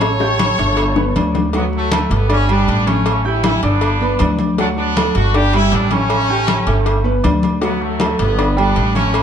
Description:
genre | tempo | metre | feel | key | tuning
latin, salsa | 158 BPM | 4/4 | straight | unclear | A4 = 440 Hz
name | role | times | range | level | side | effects
clear trumpet section | melody | 0.0-9.2 s | F#3 to C#5 | -20 LUFS | equal | none
warm baby grand piano | accompaniment | 0.0-9.2 s | D3 to G6 | -20 LUFS | right 2 dB | none
upright bass | bass | 0.0-9.2 s | G1 to D2 | -18 LUFS | equal | none
agogo bells and timbales | percussion | 0.0-9.2 s | none | -25 LUFS | right 3 dB | none
congas | percussion | 0.0-9.2 s | none | -22 LUFS | left 4 dB | none
cowbell and bongos | percussion | 0.0-9.2 s | none | -24 LUFS | left 5 dB | none
room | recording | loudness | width
moderate large studio reverb, RT60 1.3 s | dark, warm production | -13 LUFS | side -8 dB against mid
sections
0.0-1.5 A section; 1.5-9.2 A section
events
drum fill 0.0-1.5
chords
0.0 A7; 0.8 G; 1.5 D; 2.3 G; 4.6 D; 5.3 G; 6.1 A7; 6.9 G; 7.6 D; 8.4 G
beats
| 0.01 0.39 0.78 1.16 | 1.54 1.92 2.30 2.68 | 3.06 3.44 3.82 4.20 | 4.58 4.97 5.35 5.73 | 6.11 6.49 6.87 7.25 | 7.63 8.01 8.39 8.77 | 9.15

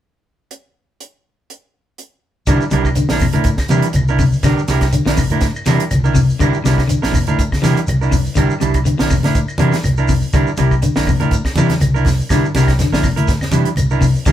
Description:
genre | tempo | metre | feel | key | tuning
afrobeat | 122 BPM | 4/4 | swing 54% on 16ths | C mixolydian | A4 = 440 Hz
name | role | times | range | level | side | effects
compact cocktail drum kit | drums | 0.5-14.3 s | hi-hat, kick drum, snare drum | -20 LUFS | equal | none
clean electric guitar | arpeggios | 2.5-14.3 s | C3 to E3 | -19 LUFS | left 4 dB | none
electric guitar at the edge of break-up | stabs | 2.5-14.3 s | G3 to Bb4 | -20 LUFS | right 6 dB | none
fingered electric bass | bass | 2.5-14.3 s | Bb1 to C3 | -18 LUFS | equal | none
claves | percussion | 2.5-14.3 s | none | -33 LUFS | left 1 dB | none
shekere | percussion | 2.5-14.3 s | none | -26 LUFS | equal | none
congas | percussion | 2.7-14.1 s | none | -20 LUFS | left 1 dB | none
room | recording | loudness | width
light reverb | band playing live in one room | -13 LUFS | side -11 dB against mid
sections
0.5-2.5 A section; 2.5-14.3 B section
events
none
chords
0.5 N.C.; 2.5 C9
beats
| 0.51 1.00 1.49 1.98 | 2.48 2.97 3.46 3.95 | 4.44 4.93 5.43 5.92 | 6.41 6.90 7.39 7.88 | 8.37 8.86 9.36 9.85 | 10.34 10.83 11.32 11.81 | 12.30 12.79 13.28 13.77 | 14.27

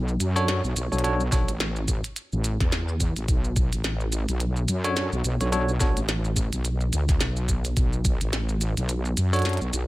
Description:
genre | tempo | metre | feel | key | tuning
glitch hop | 107 BPM | 4/4 | swing 57% on 16ths | B minor | A4 = 437 Hz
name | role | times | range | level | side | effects
wobble bass | bass | 0.0-9.9 s | A1 to F#2 | -25 LUFS | equal | chorus
glitchy drum kit | drums | 0.1-9.9 s | hi-hat, shaker, snare drum | -30 LUFS | right 1 dB | studio reverb
bell-like tine electric piano | stabs | 0.4-9.6 s | D4 to C#5 | -27 LUFS | equal | medium stereo tremolo, vintage 12-bit sampler grit, sidechain pumping, digital delay
electronic kick drum | drums | 1.3-8.2 s | none | -24 LUFS | equal | studio reverb
room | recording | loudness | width
little or no reverb | none | -22 LUFS | side -18 dB against mid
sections
0.0-9.9 A section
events
none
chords
0.0 Bm7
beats
0.48 | 1.04 1.60 2.16 2.72 | 3.28 3.84 4.40 4.96 | 5.53 6.09 6.65 7.21 | 7.77 8.33 8.89 9.45

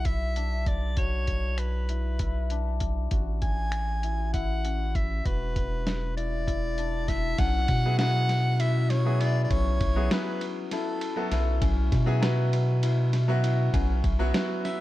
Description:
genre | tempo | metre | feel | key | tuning
progressive instrumental, band music in an uneven meter | 198 BPM (eighths) | 7/8 | straight | unclear | A4 = 440 Hz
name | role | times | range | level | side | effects
breathy soprano saxophone | melody | 0.0-11.4, 14.6-14.8 s | A4 to G#5 | -32 LUFS | equal | none
hammered dulcimer | arpeggios | 0.0-14.8 s | C#4 to F#4 | -35 LUFS | left 9 dB | none
round analog bass | bass | 0.0-14.3 s | E1 to B2 | -26 LUFS | equal | none
lo-fi sampler-style drum kit | drums | 0.1-14.8 s | finger snaps, hi-hat, kick drum, ride cymbal, snare drum | -30 LUFS | equal | none
clear concert grand piano | accompaniment | 7.9-14.8 s | F#3 to B4 | -32 LUFS | right 1 dB | none
room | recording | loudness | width
little or no reverb | dark, warm production | -24 LUFS | side -15 dB against mid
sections
0.0-7.4 A section; 7.4-14.8 B section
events
none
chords
0.0 Bm; 3.1 Amaj7; 5.3 E5; 7.4 Amaj7/B (rootless); 11.6 Bsus2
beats
0.06 0.36 0.67 | 0.98 1.28 1.59 1.90 2.20 2.51 2.81 | 3.12 3.43 3.73 4.04 4.34 4.65 4.95 | 5.26 5.56 5.87 6.17 6.48 6.78 7.08 | 7.39 7.69 7.99 8.30 8.60 8.90 9.20 | 9.51 9.81 10.11 10.41 10.71 11.02 11.32 | 11.62 11.92 12.23 12.53 12.83 13.13 13.44 | 13.74 14.04 14.34 14.65

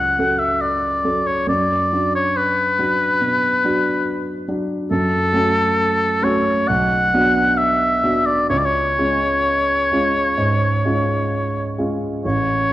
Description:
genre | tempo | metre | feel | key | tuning
classical, romantic duo for oboe and grand piano | 62-72 BPM | 4/4 | rubato | unclear | A4 = 441 Hz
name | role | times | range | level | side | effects
clear oboe | melody | 0.0-12.7 s | A4 to F#5 | -18 LUFS | left 1 dB | none
warm concert grand piano | accompaniment | 0.0-12.7 s | A1 to A4 | -20 LUFS | right 1 dB | none
room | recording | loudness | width
moderate scoring stage reverb, RT60 1.8 s | worn, warbling old tape, cassette tape, warbly pitch drift | -16 LUFS | side -14 dB against mid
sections
0.0-12.7 A section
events
none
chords
0.0 F#m; 1.5 Bm/F#; 4.9 F#m; 6.7 Bm; 8.5 C#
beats
0.61 | 1.48 2.35 3.21 4.06 | 4.90 5.76 6.69 7.57 | 8.50 9.44 10.36 11.29 | 12.24

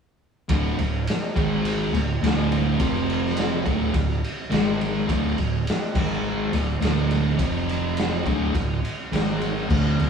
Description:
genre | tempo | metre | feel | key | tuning
stoner and doom metal | 104 BPM | 4/4 | straight | D phrygian | A4 = 440 Hz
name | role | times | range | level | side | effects
thick fuzz guitar | riff | 0.5-10.1 s | D2 to G#3 | -23 LUFS | right 1 dB | distortion
woody fretless electric bass | bass | 0.5-10.1 s | D1 to G#1 | -28 LUFS | equal | tube saturation
raw garage drum kit | drums | 0.5-10.1 s | crash cymbal, kick drum, ride cymbal, snare drum | -26 LUFS | equal | none
room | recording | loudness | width
moderate studio reverb, RT60 0.7 s | band playing live in one room | -21 LUFS | side -6 dB against mid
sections
0.5-10.1 A section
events
none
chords
0.5 D5; 1.4 G#5; 1.9 D5; 2.8 F5; 3.7 D5; 4.5 G#5; 5.1 D5; 6.0 G#5; 6.5 D5; 7.4 F5; 8.3 D5; 9.1 G#5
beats
| 0.49 1.07 1.64 2.22 | 2.79 3.37 3.94 4.52 | 5.09 5.67 6.24 6.82 | 7.39 7.97 8.54 9.12 | 9.69

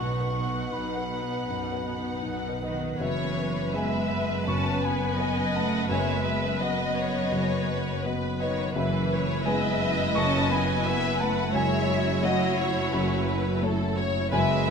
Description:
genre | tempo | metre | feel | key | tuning
cinematic, emotional film score for orchestra | 85 BPM | 4/4 | uneven beats, rubato | unclear | A4 = 440 Hz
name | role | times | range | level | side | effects
warm studio violin section | melody | 0.0-14.7 s | A4 to F#5 | -32 LUFS | left 4 dB | none
dark studio violin section | second line | 0.0-14.7 s | B4 to A5 | -32 LUFS | left 2 dB | none
silver concert flute | second line | 0.0-2.2 s | B5 to C#6 | -36 LUFS | right 3 dB | none
warm concert grand piano | accompaniment | 0.0-14.7 s | F#1 to C#6 | -28 LUFS | left 2 dB | none
warm studio viola section | accompaniment | 0.0-14.7 s | B3 to B4 | -33 LUFS | right 2 dB | none
warm studio cello section | bass | 0.0-14.7 s | B2 to C#4 | -33 LUFS | right 3 dB | none
warm studio double bass section | bass | 0.0-14.7 s | B1 to F#2 | -33 LUFS | right 5 dB | none
room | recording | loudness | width
moderate scoring stage reverb, RT60 1.6 s | close, detailed microphones | -24 LUFS | side -6 dB against mid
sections
0.0-3.0 A section; 3.0-14.7 B section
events
none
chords
0.0 B; 3.0 Emaj7/F#; 5.9 B/F#; 8.8 Emaj7/F#; 11.5 F#m7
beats
0.72 1.48 2.24 | 3.00 3.74 4.47 5.18 | 5.90 6.62 7.33 8.04 | 8.76 9.46 10.16 10.86 | 11.55 12.23 12.94 13.63 | 14.32

